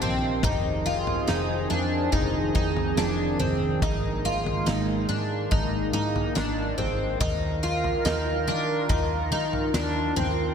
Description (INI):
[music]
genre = dream pop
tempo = 71 BPM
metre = 4/4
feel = straight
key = Ab lydian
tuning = A4 = 440 Hz
[part]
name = phased analog pad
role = sustained chords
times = 0.0-10.5 s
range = Eb3 to Bb4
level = -29 LUFS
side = right 1 dB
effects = phaser, chorus
[part]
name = picked twelve-string acoustic guitar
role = arpeggios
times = 0.0-10.5 s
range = C4 to F4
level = -27 LUFS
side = left 1 dB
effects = analog chorus, tape echo
[part]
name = vintage muted picked electric bass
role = bass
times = 0.0-10.5 s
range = F1 to Eb3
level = -31 LUFS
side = equal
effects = none
[part]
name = huge arena drum kit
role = drums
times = 0.0-10.4 s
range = kick drum, snare drum, toms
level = -30 LUFS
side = equal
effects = none
[part]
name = drifting glass-harmonics texture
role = texture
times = 0.0-3.3, 10.3-10.5 s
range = F4 to Ab4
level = -38 LUFS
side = right 5 dB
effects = none
[sound]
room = moderate lush hall reverb, RT60 2.4 s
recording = none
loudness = -23 LUFS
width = side -7 dB against mid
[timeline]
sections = 0.0-10.5 A section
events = none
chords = 0.4 Fm7; 3.8 Absus2; 7.2 Ebsus2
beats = | 0.44 1.28 2.13 2.98 | 3.82 4.67 5.51 6.36 | 7.20 8.05 8.89 9.74